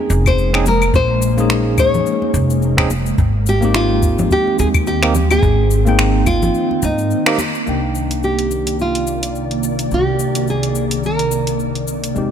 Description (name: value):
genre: sunset chillout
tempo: 107 BPM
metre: 4/4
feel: swing 57% on 16ths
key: unclear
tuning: A4 = 436 Hz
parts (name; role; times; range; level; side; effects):
- nylon-string guitar; melody; 0.0-11.8 s; Eb4 to Db5; -20 LUFS; equal; tape echo
- barky tine electric piano; accompaniment; 0.0-12.3 s; Ab3 to G5; -22 LUFS; moving between left 5 dB and right 2 dB; auto-pan, low-pass filter, tape echo
- ethereal airy pad; sustained chords; 0.0-12.3 s; C3 to D5; -22 LUFS; right 1 dB; ensemble chorus, built-in reverb
- upright bass; bass; 0.1-12.3 s; F1 to Ab2; -19 LUFS; equal; none
- deep house drum kit; drums; 0.1-12.3 s; cabasa, claves, finger snaps, hi-hat; -22 LUFS; left 1 dB; overdrive, studio reverb
- electronic kick drum; drums; 0.3-7.0 s; none; -17 LUFS; equal; studio reverb
- congas; percussion; 0.7-7.5 s; none; -26 LUFS; left 4 dB; none
room: light reverb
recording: none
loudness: -14 LUFS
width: side -8 dB against mid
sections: 0.0-7.7 A section; 7.7-12.3 B section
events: band accent 7.3; filter sweep on tine electric piano 7.7-12.3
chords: 0.0 Bbm11; 3.2 Abmaj7; 7.7 Cm9